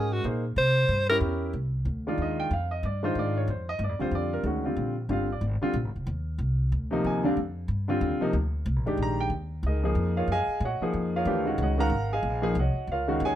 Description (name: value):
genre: modal jazz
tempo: 185 BPM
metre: 3/4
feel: swing 61% on 8ths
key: F dorian, Eb minor from 9.3 s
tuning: A4 = 441 Hz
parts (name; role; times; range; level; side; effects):
- breathy alto saxophone; melody; 0.0-1.2 s; Gb4 to C5; -24 LUFS; equal; none
- warm grand piano; accompaniment; 0.0-13.4 s; C3 to Bb5; -27 LUFS; equal; none
- upright bass; bass; 0.0-13.4 s; F1 to C3; -28 LUFS; equal; none
room: light reverb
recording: none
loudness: -25 LUFS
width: side -12 dB against mid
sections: 0.0-1.5 A section; 1.5-9.3 A section; 9.3-13.4 A section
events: alto saxophone solo 0.0-1.5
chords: 0.0 Gbsus2; 0.6 C7b9; 1.5 Fm9; 3.5 Bb6; 5.4 Fm11; 7.4 Bb6; 9.3 Ebm11